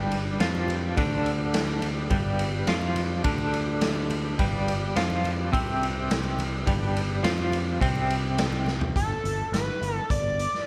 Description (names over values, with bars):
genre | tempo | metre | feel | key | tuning
psychedelic rock | 105 BPM | 4/4 | straight | G mixolydian | A4 = 440 Hz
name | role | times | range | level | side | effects
bright tonewheel organ | sustained chords | 0.0-8.9 s | G3 to B4 | -41 LUFS | equal | none
twangy electric guitar | riff | 0.0-8.9 s | G2 to F4 | -31 LUFS | equal | tremolo
overdriven picked electric bass | bass | 0.0-10.4 s | G1 to F2 | -32 LUFS | equal | none
raw garage drum kit | drums | 0.1-10.6 s | hi-hat, kick drum, ride cymbal, snare drum, toms | -31 LUFS | equal | none
congas | percussion | 0.5-8.8 s | none | -43 LUFS | equal | none
overdriven synth lead | melody | 9.0-10.7 s | A4 to D5 | -31 LUFS | equal | distortion, chorus, slapback echo
room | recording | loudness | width
light reverb | none | -26 LUFS | mono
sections
0.0-9.0 A section; 9.0-10.7 B section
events
drum fill 8.7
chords
0.0 G